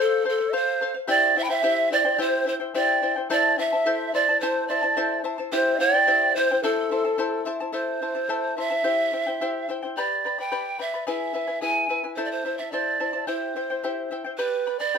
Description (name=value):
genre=andean folk, Andean ensemble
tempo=108 BPM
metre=2/4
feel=straight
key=A minor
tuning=A4 = 440 Hz
part: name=breathy reedy pan flute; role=melody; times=0.0-15.0 s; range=A4 to G#5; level=-23 LUFS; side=right 3 dB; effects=none
part: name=mellow large quena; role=second line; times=0.0-7.5 s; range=A4 to B5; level=-28 LUFS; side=left 4 dB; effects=none
part: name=charango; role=accompaniment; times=0.0-15.0 s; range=E4 to B5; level=-27 LUFS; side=left 4 dB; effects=none
room=moderate studio reverb, RT60 0.6 s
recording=minimal, uncompressed stereo recording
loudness=-21 LUFS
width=side -6 dB against mid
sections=0.0-7.7 A section; 7.7-15.0 B section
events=none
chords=0.0 F; 1.1 C; 3.3 Am; 5.5 C; 6.6 Am; 8.8 C; 10.0 G; 11.1 E; 12.2 Am; 13.3 C; 14.4 G